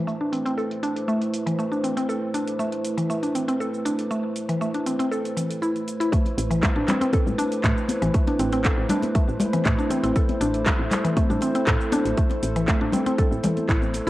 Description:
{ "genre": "afro house", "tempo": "119 BPM", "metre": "4/4", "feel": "straight", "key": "A minor", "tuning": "A4 = 440 Hz", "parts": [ { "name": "dark analog pad", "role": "sustained chords", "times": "0.0-14.1 s", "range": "A3 to C5", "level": "-28 LUFS", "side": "right 1 dB", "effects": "chorus, sidechain pumping, cassette tape" }, { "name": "mallet-like synth pluck", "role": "arpeggios", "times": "0.1-14.1 s", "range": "E3 to A4", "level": "-25 LUFS", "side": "equal", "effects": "chorus, cassette tape, sidechain pumping, analog delay" }, { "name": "afro-pop drum kit", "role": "drums", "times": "0.1-14.1 s", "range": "cabasa, handclaps, hi-hat", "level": "-30 LUFS", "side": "equal", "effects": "low-pass filter on perc, cassette tape, low-pass filter on hats, low-pass filter on snare, low-pass filter on cymbals, low-pass filter on room" }, { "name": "electronic kick drum", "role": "drums", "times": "6.1-13.8 s", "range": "none", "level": "-22 LUFS", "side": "equal", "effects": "cassette tape" }, { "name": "congas", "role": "percussion", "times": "6.3-14.0 s", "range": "none", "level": "-28 LUFS", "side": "left 2 dB", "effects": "none" }, { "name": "woody FM bass", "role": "bass", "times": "6.4-14.1 s", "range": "A1 to A2", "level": "-28 LUFS", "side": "equal", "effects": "sidechain pumping" } ], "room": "moderate spring reverb, RT60 2.0 s", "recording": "home recording on cassette", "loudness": "-21 LUFS", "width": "side -16 dB against mid", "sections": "0.0-6.1 A section; 6.1-14.1 B section", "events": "filter sweep on analog synth pad 0.0-6.1; drop 6.1-14.1", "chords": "0.0 Amadd9" }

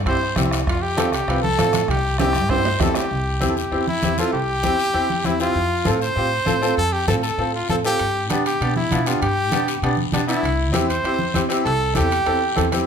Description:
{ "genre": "latin, cumbia", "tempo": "197 BPM", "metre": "4/4", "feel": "straight", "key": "C major", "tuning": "A4 = 440 Hz", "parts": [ { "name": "upright bass", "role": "bass", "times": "0.0-12.8 s", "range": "C2 to B2", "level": "-25 LUFS", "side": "equal", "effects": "none" }, { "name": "clear trumpet", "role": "melody", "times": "0.1-12.7 s", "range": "D4 to C5", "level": "-22 LUFS", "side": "equal", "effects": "none" }, { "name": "bright upright piano", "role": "accompaniment", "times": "0.1-12.9 s", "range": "B3 to B4", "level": "-23 LUFS", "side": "equal", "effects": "none" }, { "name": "bombo", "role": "percussion", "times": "0.1-3.1 s", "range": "none", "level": "-26 LUFS", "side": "right 2 dB", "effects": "none" }, { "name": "congas", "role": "percussion", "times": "0.1-12.9 s", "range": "none", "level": "-27 LUFS", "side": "equal", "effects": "none" }, { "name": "guiro", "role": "percussion", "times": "0.1-12.9 s", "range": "none", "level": "-32 LUFS", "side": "left 7 dB", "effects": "none" }, { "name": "timbales", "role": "percussion", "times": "0.1-3.0, 8.0-12.9 s", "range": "none", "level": "-31 LUFS", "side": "right 6 dB", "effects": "none" } ], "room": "moderate large studio reverb, RT60 0.8 s", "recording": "band playing live in one room", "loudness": "-18 LUFS", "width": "side -7 dB against mid", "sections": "0.0-3.1 A section; 3.1-12.9 B section", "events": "drum fill 2.2-3.1", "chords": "0.0 C; 0.7 F; 1.9 C; 5.6 F; 8.0 G; 10.4 C" }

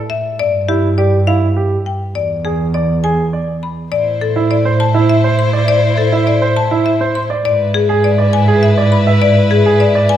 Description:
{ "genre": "classical, minimalist pattern music", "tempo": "102 BPM", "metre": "3/4", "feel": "straight", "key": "A harmonic minor from 3.9 s", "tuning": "A4 = 440 Hz", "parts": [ { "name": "rich double bass", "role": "bass", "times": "0.0-10.2 s", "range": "E2 to A2", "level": "-15 LUFS", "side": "right 2 dB", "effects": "none" }, { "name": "marimba with hard mallets", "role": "melody", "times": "0.1-10.2 s", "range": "G4 to C6", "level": "-17 LUFS", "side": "left 7 dB", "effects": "none" }, { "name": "clear baby grand piano", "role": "arpeggios", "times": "0.7-10.1 s", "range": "E4 to E5", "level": "-17 LUFS", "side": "right 4 dB", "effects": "none" }, { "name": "clear chamber violin section", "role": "sustained chords", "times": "3.9-10.2 s", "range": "E4 to C5", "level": "-20 LUFS", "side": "left 5 dB", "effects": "none" } ], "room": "wet recital hall reverb, RT60 1.6 s", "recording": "dark, warm production", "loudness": "-11 LUFS", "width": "side -10 dB against mid", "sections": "0.0-3.9 A section; 3.9-10.2 B section", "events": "none", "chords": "0.4 G5; 2.2 E7; 3.9 Am; 7.4 E/G#" }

